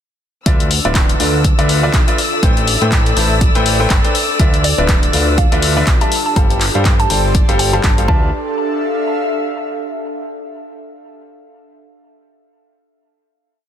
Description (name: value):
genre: piano house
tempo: 122 BPM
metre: 4/4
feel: swing 57% on 16ths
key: D dorian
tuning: A4 = 442 Hz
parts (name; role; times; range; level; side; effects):
- muted studio violin section; sustained chords; 0.5-8.1 s; D5 to E6; -23 LUFS; left 2 dB; sidechain pumping
- clear concert grand piano; riff; 0.5-8.3 s; D3 to A5; -20 LUFS; left 1 dB; sidechain pumping, ping-pong delay
- fat analog bass; bass; 0.5-8.3 s; D1 to A2; -18 LUFS; equal; sidechain pumping
- electronic kick drum; drums; 0.5-8.2 s; none; -14 LUFS; equal; none
- punchy analog drum machine; drums; 0.5-8.1 s; handclaps, hi-hat; -20 LUFS; left 3 dB; none
- airy breathy pad; texture; 0.5-10.3 s; D4 to C6; -22 LUFS; right 1 dB; chorus, sidechain pumping
- hollow square pluck; melody; 4.6-8.3 s; B4 to A5; -23 LUFS; right 1 dB; chorus, ping-pong delay
room: light reverb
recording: dense, heavily limited modern master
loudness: -12 LUFS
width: side -9 dB against mid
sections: 0.5-8.3 drop; 8.3-10.3 final chord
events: drop 0.5-8.3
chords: 0.5 Dm69; 2.2 Am9; 4.1 Dm69; 6.1 G9sus4; 8.1 Dm69; 8.3 Dmadd9